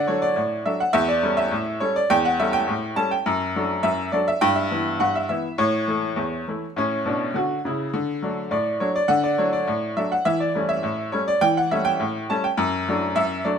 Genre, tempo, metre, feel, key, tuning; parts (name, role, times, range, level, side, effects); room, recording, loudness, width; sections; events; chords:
ragtime piano; 103 BPM; 2/4; straight; D major; A4 = 440 Hz
bright upright piano; solo; 0.0-13.6 s; E2 to A5; -20 LUFS; equal
wet stone room reverb, RT60 1.1 s; band playing live in one room; -20 LUFS; side -7 dB against mid
0.0-13.6 A section
0.0 D; 0.9 A7/E; 3.3 D/F#; 4.4 Em/G; 5.6 A; 7.9 D; 10.3 A7; 12.6 D/F#